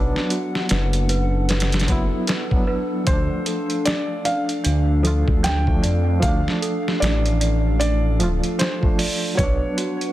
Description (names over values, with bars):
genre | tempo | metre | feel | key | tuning
trip hop | 76 BPM | 4/4 | swing 59% on 16ths | unclear | A4 = 440 Hz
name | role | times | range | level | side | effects
barky reed electric piano | accompaniment | 0.0-10.1 s | F3 to F4 | -27 LUFS | right 1 dB | overdrive, fast tremolo, tape echo
warbly tape-like pad | sustained chords | 0.0-10.1 s | D4 to F#5 | -29 LUFS | left 2 dB | chorus, built-in reverb
worn celesta | arpeggios | 0.0-10.1 s | D4 to D5 | -30 LUFS | right 4 dB | vintage 12-bit sampler grit, tape echo
dark detuned saw bass | bass | 0.0-9.6 s | D1 to F2 | -20 LUFS | equal | none
boom bap sampler-style drum kit | drums | 0.2-10.1 s | hi-hat, kick drum, snare drum | -23 LUFS | equal | studio reverb
felt-muted upright piano | melody | 3.1-10.1 s | C5 to G5 | -27 LUFS | right 1 dB | tape echo
room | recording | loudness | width
little or no reverb | dense, heavily limited modern master | -18 LUFS | side -14 dB against mid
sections
0.0-10.1 A section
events
none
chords
0.0 Bm; 3.1 Dm; 9.4 Bm